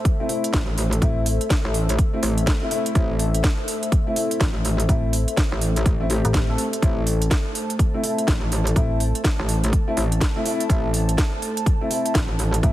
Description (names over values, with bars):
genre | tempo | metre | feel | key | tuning
bass house | 124 BPM | 4/4 | swing 61% on 16ths | A minor | A4 = 440 Hz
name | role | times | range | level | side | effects
dark analog pad | sustained chords | 0.0-12.7 s | A3 to A5 | -29 LUFS | equal | chorus, sidechain pumping
electronic kick drum | drums | 0.1-12.7 s | none | -20 LUFS | equal | none
garage drum kit | drums | 0.1-12.7 s | hi-hat, snare drum | -27 LUFS | right 1 dB | none
dark grand piano | stabs | 0.2-12.7 s | A3 to A4 | -27 LUFS | left 1 dB | sidechain pumping, dub echo
metallic wobble bass | bass | 0.5-12.6 s | A1 | -22 LUFS | equal | chorus, tube saturation, sidechain pumping
metallic FM bass | bass | 1.0-1.4, 4.9-9.1, 12.6-12.7 s | A1 | -23 LUFS | equal | tube saturation, sidechain pumping
room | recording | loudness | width
light reverb, digital ambience | heavily compressed radio sound | -19 LUFS | side -14 dB against mid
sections
0.0-12.7 A section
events
none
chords
0.0 Am